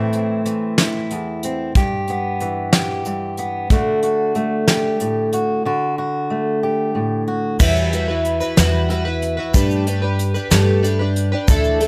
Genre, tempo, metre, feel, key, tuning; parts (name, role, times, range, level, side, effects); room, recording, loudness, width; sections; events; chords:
indie folk with a building arrangement; 62 BPM (dotted quarters); 6/8; straight; G major; A4 = 440 Hz
fingerpicked steel-string acoustic guitar; accompaniment; 0.0-7.6 s; E2 to G4; -21 LUFS; equal
soft brush drum kit; drums; 0.1-11.9 s; crash cymbal, hi-hat, kick drum, snare drum; -20 LUFS; equal
picked plugged-in twelve-string acoustic guitar; accompaniment; 7.6-11.9 s; D3 to B4; -22 LUFS; equal; analog chorus
upright bass; bass; 7.6-11.9 s; D2 to G2; -22 LUFS; equal
tube shaker; percussion; 7.6-11.7 s; -34 LUFS; equal
light reverb; -19 LUFS; mono
0.0-7.6 A section; 7.6-11.9 B section
break 5.7-7.6
0.0 Am; 1.8 Em/G; 3.7 D; 7.6 Emadd9; 9.5 Gadd9